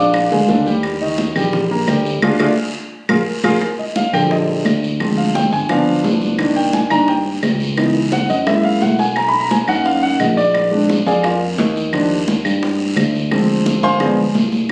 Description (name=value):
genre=Afro-Cuban jazz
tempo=173 BPM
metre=4/4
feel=straight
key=Eb major from 3.6 s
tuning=A4 = 443 Hz
part: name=vibraphone with soft mallets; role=melody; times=0.0-0.6 s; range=F5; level=-21 LUFS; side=equal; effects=none
part: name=dark baby grand piano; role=accompaniment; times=0.0-14.7 s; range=D3 to D6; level=-19 LUFS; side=equal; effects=none
part: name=fingered electric bass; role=bass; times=0.0-14.7 s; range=G1 to G2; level=-23 LUFS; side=equal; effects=none
part: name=bongos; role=percussion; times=0.1-14.7 s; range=none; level=-30 LUFS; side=equal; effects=none
part: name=claves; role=percussion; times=0.1-14.7 s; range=none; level=-28 LUFS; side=equal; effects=none
part: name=congas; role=percussion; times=0.1-14.7 s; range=none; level=-24 LUFS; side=equal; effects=none
part: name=guiro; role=percussion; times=0.1-14.7 s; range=none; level=-32 LUFS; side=equal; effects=none
room=wet large studio reverb, RT60 1.3 s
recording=recorded on a phone in the room, studio reverb, compression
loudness=-16 LUFS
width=mono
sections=0.0-3.6 A section; 3.6-14.7 B section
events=band accent 2.2-3.6; drum fill 2.7-3.6; grand piano solo 3.6-14.7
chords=0.1 Bb6; 0.8 Ebmaj7; 2.2 Ddim; 2.9 Bb5; 3.6 Ebmaj7; 5.0 Dm7b5; 5.7 G7; 6.4 Cm7; 7.8 Dbm7; 8.5 Gb7; 9.2 Bmaj7; 10.5 Bb7; 11.9 Ebmaj7; 13.3 Dm7b5; 14.0 G7b9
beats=0.14 0.49 | 0.83 1.18 1.53 1.88 | 2.22 2.57 2.92 3.27 | 3.61 3.96 4.31 4.65 | 5.00 5.35 5.70 6.04 | 6.39 6.74 7.08 7.43 | 7.78 8.12 8.47 8.82 | 9.16 9.51 9.86 10.20 | 10.55 10.89 11.24 11.59 | 11.93 12.28 12.62 12.97 | 13.31 13.66 14.00 14.35 | 14.69